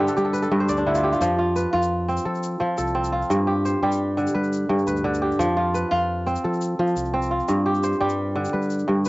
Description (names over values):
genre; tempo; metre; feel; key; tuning
west african traditional, West African string and xylophone music; 115 BPM (dotted quarters); 12/8; straight; F lydian; A4 = 441 Hz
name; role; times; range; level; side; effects
kora; arpeggios; 0.0-9.1 s; G2 to E5; -21 LUFS; equal; plate reverb
modern bright fingered electric bass; bass; 0.0-9.1 s; C2 to G3; -27 LUFS; equal; none
tube shaker; percussion; 0.1-9.1 s; none; -42 LUFS; left 8 dB; none
room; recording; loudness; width
moderate studio ambience, RT60 0.5 s; home recording on cassette, nothing above 7.7 kHz; -20 LUFS; side -21 dB against mid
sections
0.0-9.1 A section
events
kora fill 0.0-1.2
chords
0.0 G5; 1.2 F; 3.3 G; 5.4 F; 7.5 G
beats
0.16 0.68 | 1.21 1.73 2.25 2.78 | 3.30 3.82 4.35 4.87 | 5.39 5.92 6.44 6.96 | 7.48 8.01 8.53 9.05